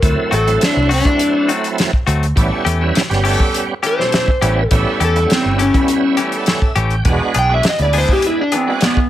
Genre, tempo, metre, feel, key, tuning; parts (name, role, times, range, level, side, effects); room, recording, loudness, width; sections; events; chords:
straight-eighth soul blues; 102 BPM; 4/4; straight; A mixolydian; A4 = 436 Hz
electric slide guitar; melody; 0.0-9.1 s; B3 to G5; -16 LUFS; left 1 dB; plate reverb
bright tonewheel organ; accompaniment; 0.0-9.0 s; B2 to G5; -21 LUFS; right 4 dB; slow rotary speaker, overdrive, chorus vibrato, plate reverb
fingered electric bass; bass; 0.0-8.0 s; E1 to E2; -17 LUFS; equal
warm soul drum kit; drums; 0.0-9.1 s; hi-hat, kick drum, snare drum; -17 LUFS; equal
direct-recorded clean electric guitar; stabs; 0.3-8.7 s; E3 to G#4; -23 LUFS; left 5 dB; plate reverb, tape echo
clear horn section; sustained chords; 2.3-9.0 s; G#3 to A4; -26 LUFS; left 1 dB; plate reverb
light reverb; -13 LUFS; side -12 dB against mid
0.0-9.1 A section
electric slide guitar solo 0.0-9.1; tonewheel organ fill 6.2-7.1
0.0 D7; 2.4 A7; 7.1 E7